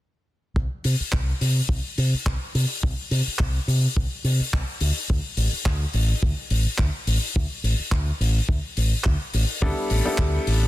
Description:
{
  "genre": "nu-disco, nu disco",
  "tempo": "106 BPM",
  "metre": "4/4",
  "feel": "swing 55% on 16ths",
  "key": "unclear",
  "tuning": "A4 = 439 Hz",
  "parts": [
    { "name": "fingered electric bass with an envelope filter", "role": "bass", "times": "0.6-10.7 s", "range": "A1 to C3", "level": "-22 LUFS", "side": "equal", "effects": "none" },
    { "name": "kick drum", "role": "drums", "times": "0.6-10.3 s", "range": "none", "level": "-24 LUFS", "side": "equal", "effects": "studio reverb, soft clipping on snare" },
    { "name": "damped 70s drum kit", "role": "drums", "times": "0.8-10.6 s", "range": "handclaps, hi-hat", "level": "-28 LUFS", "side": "left 3 dB", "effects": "studio reverb" },
    { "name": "bright concert grand piano", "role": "accompaniment", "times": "9.6-10.7 s", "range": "G3 to A4", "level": "-25 LUFS", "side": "left 1 dB", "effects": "ping-pong delay" }
  ],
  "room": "little or no reverb",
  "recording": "dense, heavily limited modern master",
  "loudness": "-21 LUFS",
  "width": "side -16 dB against mid",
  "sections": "0.6-10.7 A section",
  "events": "none",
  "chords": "0.6 N.C.; 4.8 D5; 9.6 G69",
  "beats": "| 0.56 1.13 1.70 2.26 | 2.83 3.40 3.96 4.53 | 5.09 5.66 6.22 6.79 | 7.36 7.92 8.49 9.06 | 9.62 10.19"
}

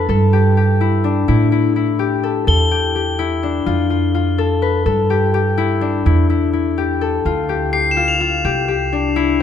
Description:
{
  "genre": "contemporary instrumental, chamber music in an uneven meter",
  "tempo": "251 BPM (eighths)",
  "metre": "5/8",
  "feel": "straight",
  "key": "E phrygian",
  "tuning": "A4 = 440 Hz",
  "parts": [
    { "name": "concert harp", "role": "arpeggios", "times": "0.0-9.4 s", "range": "B3 to B4", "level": "-17 LUFS", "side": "left 7 dB", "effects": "none" },
    { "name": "upright bass", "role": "bass", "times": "0.0-9.4 s", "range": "C2 to A2", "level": "-18 LUFS", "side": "right 2 dB", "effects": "none" },
    { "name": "crotales", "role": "texture", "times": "2.5-3.1, 7.7-8.6 s", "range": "C7 to G7", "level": "-21 LUFS", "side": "left 2 dB", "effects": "none" }
  ],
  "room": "moderate concert hall reverb, RT60 2.2 s",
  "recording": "close, detailed microphones",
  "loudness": "-14 LUFS",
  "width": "side -8 dB against mid",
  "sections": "0.0-7.3 A section; 7.3-9.4 B section",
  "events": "none",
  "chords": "0.1 G5; 1.3 A5; 2.5 Em7; 3.7 F; 4.9 G5; 6.1 Em; 7.3 Dm7; 8.4 C",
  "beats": "| 0.09 0.33 0.57 0.81 1.04 | 1.28 1.52 1.76 2.00 2.24 | 2.48 2.72 2.96 3.19 3.43 | 3.67 3.91 4.15 4.39 4.63 | 4.87 5.11 5.34 5.58 5.82 | 6.06 6.30 6.54 6.78 7.02 | 7.25 7.49 7.73 7.97 8.21 | 8.45 8.69 8.93 9.17 9.41"
}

